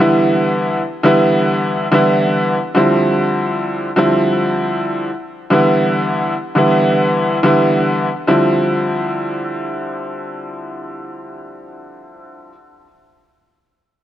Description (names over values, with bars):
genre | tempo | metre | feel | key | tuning
hip hop | 87 BPM | 4/4 | swing 56% on 16ths | D dorian | A4 = 441 Hz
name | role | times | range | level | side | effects
bright upright piano | solo | 0.0-12.5 s | D3 to E4 | -14 LUFS | equal | cassette tape, high-pass filter, low-pass filter, digital delay
room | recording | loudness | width
light reverb | dark, warm production | -13 LUFS | side -12 dB against mid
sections
0.0-2.8 A section; 2.8-8.3 B section; 8.3-11.0 C section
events
none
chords
0.0 Em7; 2.8 Dm11; 5.5 Em7; 8.3 Dm11